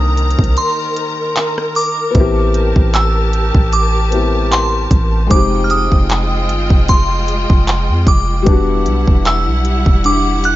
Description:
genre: contemporary R&B.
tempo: 76 BPM.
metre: 4/4.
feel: swing 54% on 16ths.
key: unclear.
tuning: A4 = 440 Hz.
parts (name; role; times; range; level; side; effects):
glassy synth bell; melody; 0.0-10.6 s; C6 to F#6; -19 LUFS; right 1 dB; chorus.
felt-muted upright piano; accompaniment; 0.0-10.6 s; G3 to G4; -21 LUFS; left 5 dB; none.
clear symphonic string section; sustained chords; 0.0-10.6 s; Eb3 to Bb5; -21 LUFS; left 1 dB; none.
warm 808-style bass; bass; 0.0-10.6 s; E1 to F2; -16 LUFS; equal; none.
synth chime; texture; 0.0-10.6 s; D4 to C5; -27 LUFS; left 1 dB; ensemble chorus, tape echo.
trap drum kit; drums; 0.2-10.6 s; handclaps, hi-hat, kick drum, rim click; -13 LUFS; equal; none.
room: little or no reverb.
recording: nothing above 7.6 kHz.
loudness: -11 LUFS.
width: side -15 dB against mid.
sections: 0.0-10.6 A section.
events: break 0.6-2.1.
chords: 0.0 Cm9; 2.1 Am9; 5.3 Fm9; 8.5 Em9.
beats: 0.57 1.36 | 2.15 2.94 3.73 4.52 | 5.31 6.10 6.89 7.68 | 8.46 9.26 10.04.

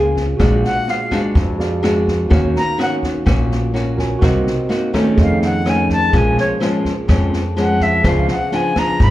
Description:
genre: bossa nova.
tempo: 126 BPM.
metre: 4/4.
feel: straight.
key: unclear.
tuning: A4 = 440 Hz.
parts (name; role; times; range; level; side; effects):
barky tine electric piano; accompaniment; 0.0-9.1 s; E#4 to G#5; -24 LUFS; right 3 dB; slapback echo.
nylon-string guitar; accompaniment; 0.0-9.1 s; E#2 to G#4; -19 LUFS; left 1 dB; slapback echo.
upright bass; bass; 0.0-9.1 s; G#1 to E#2; -18 LUFS; equal; none.
open jazz drum kit; drums; 0.2-9.1 s; kick drum, rim click, snare drum; -20 LUFS; equal; none.
silver concert flute; melody; 0.6-9.1 s; C#5 to B5; -19 LUFS; left 1 dB; slapback echo.
room: light reverb, studio ambience.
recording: live gig heard through the venue's PA, club ambience.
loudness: -14 LUFS.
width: side -15 dB against mid.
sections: 0.0-9.1 A section.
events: flute solo 0.0-9.1.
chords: 0.4 A#7b13; 2.3 D#m7; 4.2 Cm7b5; 5.2 F7alt; 6.1 A#m7; 8.0 C#7b9.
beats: | 0.40 0.88 1.35 1.83 | 2.31 2.79 3.27 3.75 | 4.22 4.70 5.18 5.66 | 6.14 6.61 7.09 7.57 | 8.05 8.53 9.00.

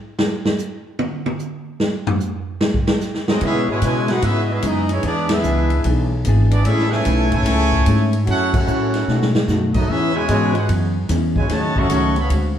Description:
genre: jazz, big band swing.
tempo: 148 BPM.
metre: 4/4.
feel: swing 65% on 8ths.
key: C# minor.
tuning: A4 = 440 Hz.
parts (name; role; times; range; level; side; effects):
swinging big-band drum kit; drums; 0.2-12.4 s; crash cymbal, hi-hat, kick drum, ride cymbal, snare drum, toms; -22 LUFS; equal; none.
bright trumpet section; melody; 3.3-12.3 s; B3 to C#6; -24 LUFS; equal; none.
clear trombone section; second line; 3.3-12.3 s; B2 to F#4; -22 LUFS; right 1 dB; none.
hollow-body jazz guitar; accompaniment; 3.4-12.6 s; B2 to A4; -23 LUFS; left 2 dB; none.
upright bass; bass; 3.4-12.6 s; G#1 to C#3; -20 LUFS; equal; none.
room: wet echo chamber reverb, RT60 1.4 s.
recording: heard from further back in the room.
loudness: -16 LUFS.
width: side -9 dB against mid.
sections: 0.0-3.4 A section; 3.4-12.6 B section.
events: drum solo 0.0-3.4; band accent 5.2, 8.5; drum fill 9.1-9.5.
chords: 0.0 N.C.; 2.6 G#7 (rootless); 3.4 C#m7; 5.0 E7; 6.6 Amaj7; 8.3 F#m7; 9.1 B7; 9.9 E6; 11.5 D#m7b5.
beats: | 0.17 0.58 0.98 1.39 | 1.79 2.20 2.60 3.01 | 3.41 3.81 4.22 4.62 | 5.03 5.43 5.84 6.24 | 6.64 7.05 7.45 7.86 | 8.26 8.66 9.07 9.47 | 9.88 10.28 10.68 11.09 | 11.49 11.89 12.30.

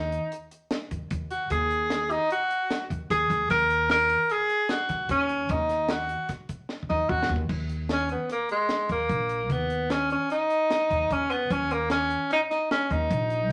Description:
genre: progressive instrumental, band music in an uneven meter.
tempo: 150 BPM.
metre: 5/4.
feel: straight.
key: Eb minor.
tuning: A4 = 443 Hz.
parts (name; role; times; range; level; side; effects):
warm tenor saxophone; melody; 0.0-13.5 s; Ab3 to Bb4; -27 LUFS; equal; none.
upright bass; bass; 0.0-13.5 s; Bb1 to Eb2; -34 LUFS; equal; none.
deep reggae drum kit; drums; 0.1-13.4 s; crash cymbal, hi-hat, kick drum, snare drum, toms; -36 LUFS; equal; none.
room: wet studio reverb, RT60 0.7 s.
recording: none.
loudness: -26 LUFS.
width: mono.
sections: 0.0-7.5 A section; 7.5-13.5 B section.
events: tenor saxophone solo 0.0-7.5; drum fill 6.7-7.5.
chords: 0.0 N.C.; 7.5 Eb5; 9.5 Badd9/D#; 11.5 Eb5.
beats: 0.32 0.72 1.12 | 1.51 1.91 2.31 2.71 3.10 | 3.50 3.90 4.30 4.70 5.10 | 5.50 5.90 6.30 6.70 7.10 | 7.50 7.90 8.30 8.70 9.10 | 9.50 9.90 10.30 10.70 11.10 | 11.50 11.90 12.30 12.70 13.10 | 13.50.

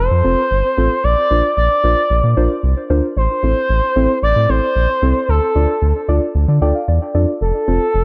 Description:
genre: synth-pop.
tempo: 113 BPM.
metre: 4/4.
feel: straight.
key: unclear.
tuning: A4 = 440 Hz.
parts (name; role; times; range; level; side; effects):
expressive portamento lead; melody; 0.0-8.0 s; A4 to D5; -19 LUFS; equal; chorus, tape echo.
round analog bass; bass; 0.0-8.0 s; F1 to D3; -18 LUFS; equal; none.
muted felt-like synth keys; accompaniment; 0.2-7.8 s; C4 to G5; -23 LUFS; equal; chorus, tape echo.
room: light reverb.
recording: echo-heavy mix.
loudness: -16 LUFS.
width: mono.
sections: 0.0-8.0 A section.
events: synth keys fill 6.4-7.4.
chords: 0.0 F; 1.0 Bbadd9; 3.2 Am; 5.3 Dm; 7.4 F.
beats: 0.51 | 1.04 1.57 2.10 2.63 | 3.17 3.70 4.23 4.76 | 5.29 5.82 6.35 6.88 | 7.41 7.94.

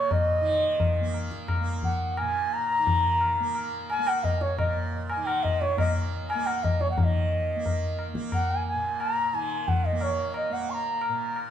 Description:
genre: indian classical, Hindustani.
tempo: 88 BPM.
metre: 5/4.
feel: straight.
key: Bb raga malkauns.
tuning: A4 = 440 Hz.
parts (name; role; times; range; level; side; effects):
bright reedy bansuri; melody; 0.0-11.4 s; Db5 to Db6; -26 LUFS; equal; none.
tanpura; drone; 0.0-11.5 s; Bb2 to Bb3; -36 LUFS; right 4 dB; none.
tabla; percussion; 0.1-11.5 s; none; -28 LUFS; left 2 dB; none.
room: wet recital hall reverb, RT60 1.7 s.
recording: recorded in a church or concert hall.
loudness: -24 LUFS.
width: side -9 dB against mid.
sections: 0.0-7.0 A section; 7.0-11.5 B section.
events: speeding up 0.0-11.5.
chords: none.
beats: | 0.11 0.81 1.50 2.18 2.87 | 3.56 4.24 4.93 5.61 6.29 | 6.97 7.65 8.33 9.01 9.68 | 10.36 11.03.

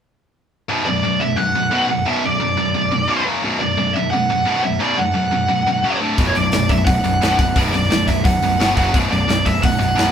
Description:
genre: heavy metal.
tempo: 174 BPM.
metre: 4/4.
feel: straight.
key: B minor.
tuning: A4 = 439 Hz.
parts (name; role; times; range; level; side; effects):
heavy high-gain guitar; riff; 0.7-10.1 s; B1 to F#3; -19 LUFS; equal; distortion.
high-gain lead guitar; melody; 0.9-10.1 s; C#5 to F#5; -19 LUFS; right 1 dB; distortion.
fuzz picked electric bass; bass; 6.2-10.1 s; B0 to G1; -21 LUFS; equal; overdrive.
modern studio drum kit; drums; 6.2-10.1 s; hi-hat, kick drum, snare drum; -20 LUFS; left 1 dB; none.
room: moderate stone room reverb, RT60 1.3 s.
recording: band playing live in one room.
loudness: -15 LUFS.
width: side -8 dB against mid.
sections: 0.7-10.1 A section.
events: none.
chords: 0.7 Bm; 3.3 F#5; 3.4 Bm; 5.8 F#5; 6.0 D5; 6.2 Bm; 8.8 F#5; 8.9 Bm.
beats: | 0.69 1.04 1.38 1.72 | 2.06 2.41 2.75 3.09 | 3.44 3.78 4.12 4.47 | 4.81 5.16 5.50 5.84 | 6.19 6.53 6.88 7.22 | 7.57 7.91 8.25 8.60 | 8.94 9.29 9.63 9.97.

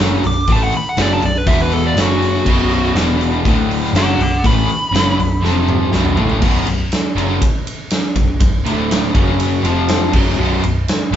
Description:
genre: hard rock.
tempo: 121 BPM.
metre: 4/4.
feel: straight.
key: unclear.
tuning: A4 = 440 Hz.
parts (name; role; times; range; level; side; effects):
cranked stack guitar; riff; 0.0-11.2 s; B1 to A3; -20 LUFS; left 6 dB; overdrive, harmonic tremolo.
cranked stack guitar; riff; 0.0-11.2 s; B1 to A3; -23 LUFS; right 6 dB; overdrive, spring reverb.
crunchy overdriven guitar; riff; 0.0-11.2 s; B1 to A3; -23 LUFS; equal; none.
vintage muted picked electric bass; bass; 0.0-11.2 s; B0 to A1; -20 LUFS; equal; none.
huge arena drum kit; drums; 0.0-11.2 s; crash cymbal, hi-hat, kick drum, ride cymbal, snare drum, toms; -18 LUFS; right 1 dB; none.
dark smooth lead guitar; melody; 0.3-5.4 s; F#4 to D6; -19 LUFS; equal; overdrive, slapback echo.
room: moderate large studio reverb, RT60 0.8 s.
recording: band playing live in one room, nothing above 7.8 kHz.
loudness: -13 LUFS.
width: side -10 dB against mid.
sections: 0.0-6.4 A section; 6.4-11.2 B section.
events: lead electric guitar solo 0.0-6.4; drum fill 5.4-6.4.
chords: 0.0 B5; 1.5 E5; 2.0 F#5; 2.5 B5; 3.0 E5; 3.5 D5; 4.0 B5; 5.4 F5; 5.9 B5; 8.7 D5; 9.2 F#5; 9.6 F5; 10.1 B5.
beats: | 0.49 0.98 1.48 1.97 | 2.47 2.96 3.46 3.95 | 4.45 4.94 5.44 5.93 | 6.43 6.92 7.42 7.91 | 8.41 8.90 9.40 9.89 | 10.39 10.88.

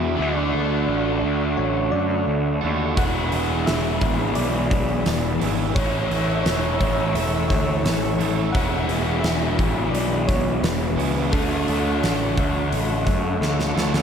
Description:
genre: rock, shoegaze and dream pop.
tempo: 86 BPM.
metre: 4/4.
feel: straight.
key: unclear.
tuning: A4 = 437 Hz.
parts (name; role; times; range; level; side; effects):
soft struck synth lead; melody; 0.0-13.4 s; A4 to F#5; -29 LUFS; equal; chorus, diffuse ambient delay.
sweeping resonant pad; sustained chords; 0.0-14.0 s; G#4 to E6; -33 LUFS; right 1 dB; chorus.
electric guitar through a small old amp; arpeggios; 0.0-14.0 s; E3 to A4; -33 LUFS; right 1 dB; none.
biting overdriven guitar; riff; 0.0-14.0 s; E2 to F#4; -26 LUFS; left 7 dB; lush chorus.
raw garage guitar; riff; 0.0-14.0 s; E2 to F#4; -27 LUFS; right 9 dB; overdrive, reverse reverb.
fuzz picked electric bass; bass; 0.0-14.0 s; E1 to F#2; -25 LUFS; equal; overdrive.
huge arena drum kit; drums; 3.0-14.0 s; hi-hat, kick drum, snare drum; -26 LUFS; equal; none.
room: moderate plate reverb, RT60 2.8 s.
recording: dreamy mix soaked in reverb.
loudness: -19 LUFS.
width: side -7 dB against mid.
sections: 0.0-14.0 A section.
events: drum fill 13.4-14.0.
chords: 0.2 Dmaj7; 3.0 E7; 5.8 A; 8.5 E7; 11.3 Dmaj7.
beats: | 0.18 0.88 1.57 2.27 | 2.97 3.66 4.36 5.06 | 5.75 6.45 7.15 7.84 | 8.54 9.24 9.94 10.63 | 11.33 12.02 12.72 13.41.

